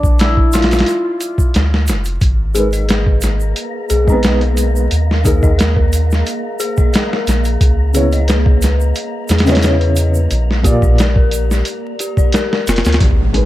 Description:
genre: trip hop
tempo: 89 BPM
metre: 4/4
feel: swing 53% on 16ths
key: unclear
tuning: A4 = 440 Hz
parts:
  - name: cimbalom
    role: melody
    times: 0.0-3.9 s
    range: D4 to G#4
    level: -18 LUFS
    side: left 1 dB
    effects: tape echo
  - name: soft dub sub bass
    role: bass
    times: 0.0-13.5 s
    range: E#1 to E2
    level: -15 LUFS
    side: equal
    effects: none
  - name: boom bap sampler-style drum kit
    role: drums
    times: 0.0-13.5 s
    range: hi-hat, kick drum, snare drum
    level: -14 LUFS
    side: equal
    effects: none
  - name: egg shaker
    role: percussion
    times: 0.0-13.0 s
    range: none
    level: -29 LUFS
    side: right 8 dB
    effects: none
  - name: wind-like tuned noise texture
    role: texture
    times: 2.7-13.0 s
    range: A#3 to A#5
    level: -27 LUFS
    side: right 4 dB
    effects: built-in reverb
  - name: felt-muted upright piano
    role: accompaniment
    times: 2.5-13.5 s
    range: A#2 to A#5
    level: -18 LUFS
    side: equal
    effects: tremolo, vintage 12-bit sampler grit, low-pass filter, tape echo
  - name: dark detuned synth bell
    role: arpeggios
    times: 2.5-13.0 s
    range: G4 to D#5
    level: -22 LUFS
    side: left 4 dB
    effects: chorus, phaser, tape echo
  - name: impact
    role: sound effects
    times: 13.0-13.5 s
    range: none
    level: -17 LUFS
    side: equal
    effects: none
room: little or no reverb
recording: vinyl crackle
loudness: -12 LUFS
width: side -15 dB against mid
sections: 0.0-13.0 A section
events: filter sweep on felt piano 0.0-13.0; impact 13.0-13.5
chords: 0.0 A#; 2.2 G#madd9; 4.9 D#sus4; 7.6 C#m7; 10.3 A#

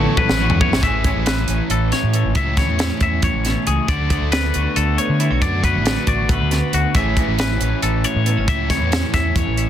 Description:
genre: math rock and midwest emo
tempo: 274 BPM (eighths)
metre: 7/8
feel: straight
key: A major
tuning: A4 = 440 Hz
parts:
  - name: clean electric guitar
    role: accompaniment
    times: 0.0-9.7 s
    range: E2 to G#4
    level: -26 LUFS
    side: right 7 dB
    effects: ensemble chorus
  - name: twangy electric guitar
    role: arpeggios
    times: 0.0-9.7 s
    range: F#4 to E5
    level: -22 LUFS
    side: left 6 dB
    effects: digital delay
  - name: biting overdriven guitar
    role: riff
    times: 0.0-9.7 s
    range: A2 to F#4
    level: -24 LUFS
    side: left 1 dB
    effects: none
  - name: overdriven fingered electric bass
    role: bass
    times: 0.0-9.7 s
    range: G#1 to D3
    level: -21 LUFS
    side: equal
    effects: none
  - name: crisp fusion drum kit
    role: drums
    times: 0.2-9.7 s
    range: hi-hat, kick drum, snare drum, toms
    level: -21 LUFS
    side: equal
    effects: none
room: little or no reverb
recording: dense, heavily limited modern master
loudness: -16 LUFS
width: side -10 dB against mid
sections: 0.8-9.7 A section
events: drum fill 0.0-0.8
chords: 0.0 A69; 0.8 Amaj7; 3.9 D6; 7.0 Amaj7

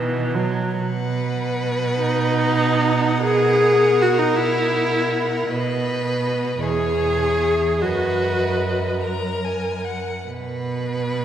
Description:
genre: classical, slow romantic movement for string quartet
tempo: 46-54 BPM (dotted quarters)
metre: 6/8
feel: rubato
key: B major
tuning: A4 = 440 Hz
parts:
  - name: clear viola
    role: accompaniment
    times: 0.0-9.0 s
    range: E3 to G#4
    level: -20 LUFS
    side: equal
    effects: none
  - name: rich cello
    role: bass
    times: 0.0-11.2 s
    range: E2 to B2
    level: -24 LUFS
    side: right 4 dB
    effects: none
  - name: rich violin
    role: melody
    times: 0.8-10.3 s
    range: C#5 to A#5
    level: -31 LUFS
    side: left 4 dB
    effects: none
  - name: rich violin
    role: second line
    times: 0.8-11.2 s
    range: G#4 to B4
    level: -25 LUFS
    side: left 2 dB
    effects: none
room: wet church reverb, RT60 2.8 s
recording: recorded in a church or concert hall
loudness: -18 LUFS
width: side -10 dB against mid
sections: 0.8-11.2 A section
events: none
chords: 0.0 B5; 0.8 B; 3.2 F#7/B; 5.5 B; 6.6 C#m/E; 7.8 B/F#; 10.3 N.C.

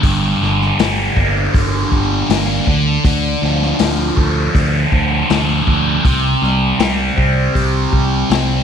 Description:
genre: psychedelic rock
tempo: 80 BPM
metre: 4/4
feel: straight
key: G minor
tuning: A4 = 440 Hz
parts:
  - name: thick fuzz guitar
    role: riff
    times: 0.0-8.6 s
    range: G2 to D4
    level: -16 LUFS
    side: equal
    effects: distortion, phaser
  - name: fingered electric bass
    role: bass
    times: 0.0-8.6 s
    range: G1 to D2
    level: -18 LUFS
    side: right 1 dB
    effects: none
  - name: vintage drum kit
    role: drums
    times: 0.0-8.5 s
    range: hi-hat, kick drum, snare drum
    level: -18 LUFS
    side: left 2 dB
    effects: none
room: light reverb, small room ambience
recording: 1960s-style stereo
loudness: -13 LUFS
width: side -8 dB against mid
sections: 0.0-8.6 A section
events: none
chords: 0.0 Gm; 2.7 Dm; 6.0 C5

